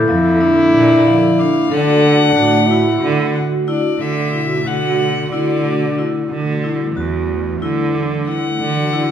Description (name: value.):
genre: contemporary instrumental, chamber music in an uneven meter.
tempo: 183 BPM (eighths).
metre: 7/8.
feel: straight.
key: D major.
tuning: A4 = 442 Hz.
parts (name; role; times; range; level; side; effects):
warm French horn; second line; 0.0-4.0, 8.6-9.1 s; D4 to E4; -15 LUFS; equal; none.
airy breathy pad; sustained chords; 0.0-9.1 s; B2 to A4; -23 LUFS; right 1 dB; chorus.
glockenspiel with rubber mallets; texture; 0.0-1.4 s; D6 to G6; -27 LUFS; left 4 dB; none.
vibraphone with medium hard mallets; arpeggios; 0.1-9.1 s; F3 to A4; -20 LUFS; left 2 dB; none.
clear cello; bass; 0.1-9.1 s; E2 to D3; -20 LUFS; right 4 dB; none.
rich violin; melody; 0.7-9.1 s; D5 to F#5; -21 LUFS; left 8 dB; none.
room: moderate recital hall reverb, RT60 1.7 s.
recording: recorded in a church or concert hall.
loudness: -13 LUFS.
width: side -9 dB against mid.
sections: 0.0-4.0 A section; 4.0-9.1 B section.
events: none.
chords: 0.0 Bbmaj7; 1.7 D; 4.0 D69/B; 6.3 A5; 8.6 Dadd9.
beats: 0.09 0.42 0.74 1.07 1.40 | 1.72 2.05 2.38 2.70 3.03 3.36 3.68 | 4.01 4.34 4.66 4.99 5.32 5.65 5.97 | 6.30 6.63 6.96 7.29 7.62 7.94 8.27 | 8.60 8.93.